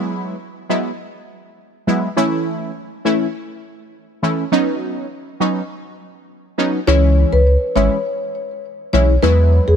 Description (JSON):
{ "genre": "dancehall", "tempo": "102 BPM", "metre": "4/4", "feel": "straight", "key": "C# minor", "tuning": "A4 = 439 Hz", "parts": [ { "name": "synth brass stab", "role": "accompaniment", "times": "0.0-9.8 s", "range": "E3 to E4", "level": "-18 LUFS", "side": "equal", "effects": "chorus, phaser" }, { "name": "marimba with soft mallets", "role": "melody", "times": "6.9-9.8 s", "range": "G#4 to C#5", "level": "-18 LUFS", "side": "left 1 dB", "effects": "ping-pong delay" }, { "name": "warm sub bass", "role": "bass", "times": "6.9-9.8 s", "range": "G#1 to E2", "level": "-13 LUFS", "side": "equal", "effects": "none" } ], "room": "light reverb", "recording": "none", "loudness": "-15 LUFS", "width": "side -8 dB against mid", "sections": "0.0-6.9 A section; 6.9-9.8 B section", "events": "none", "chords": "0.0 Eadd9; 2.2 A; 4.5 Badd9; 6.9 C#m; 9.2 Eadd9", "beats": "0.40 0.99 1.58 | 2.17 2.76 3.35 3.93 | 4.52 5.11 5.70 6.29 | 6.88 7.46 8.05 8.64 | 9.23" }